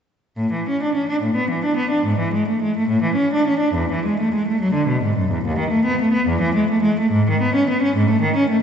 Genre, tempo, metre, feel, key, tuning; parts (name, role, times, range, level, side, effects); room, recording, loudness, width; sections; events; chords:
classical, baroque-style suite movement for unaccompanied cello; 71 BPM (dotted quarters); 6/8; uneven beats, rubato; A major; A4 = 445 Hz
rich cello; solo; 0.4-8.6 s; D#2 to D4; -17 LUFS; equal
wet concert hall reverb, RT60 2.2 s; heard from further back in the room, nothing above 7.9 kHz; -17 LUFS; side -7 dB against mid
0.4-8.6 A section